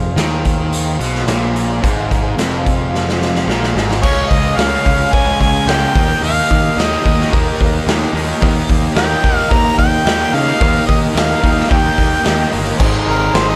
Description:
garage rock duo or trio; 110 BPM; 4/4; straight; A4 = 441 Hz
combo organ; sustained chords; 0.0-13.6 s; G4 to F5; -28 LUFS; equal
fuzz guitar; riff; 0.0-13.6 s; F2 to Eb4; -21 LUFS; equal; distortion
growling picked electric bass; bass; 0.0-13.6 s; F1 to Eb3; -23 LUFS; equal; overdrive
raw garage drum kit; drums; 0.2-13.5 s; crash cymbal, hi-hat, kick drum, snare drum; -19 LUFS; equal
clear harmonica; melody; 4.0-13.6 s; Bb4 to Bb5; -20 LUFS; equal; overdrive
small room reverb; -15 LUFS; mono
0.0-4.0 A section; 4.0-12.8 B section
drum fill 2.9-4.0
0.0 Fm; 4.0 Db; 6.0 Eb; 12.8 Ab
0.18 0.73 1.28 | 1.83 2.38 2.93 3.48 | 4.03 4.58 5.13 5.68 | 6.23 6.77 7.32 7.87 | 8.42 8.96 9.51 10.06 | 10.61 11.15 11.70 12.25 | 12.79 13.34

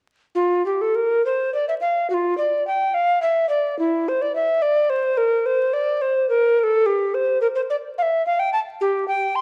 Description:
classical, baroque-style fantasia for unaccompanied recorder; 72 BPM (dotted quarters); 12/8; rubato; F major; A4 = 440 Hz
mellow tenor recorder; solo; 0.4-9.4 s; E4 to C6; -21 LUFS; equal
wet recital hall reverb, RT60 1.4 s; worn, warbling old tape, cassette tape, vinyl crackle, warbly pitch drift; -21 LUFS; mono
0.3-9.4 A section
| 0.35 1.24 2.10 2.94 | 3.79 4.63 5.47 6.31 | 7.14 7.98 8.80

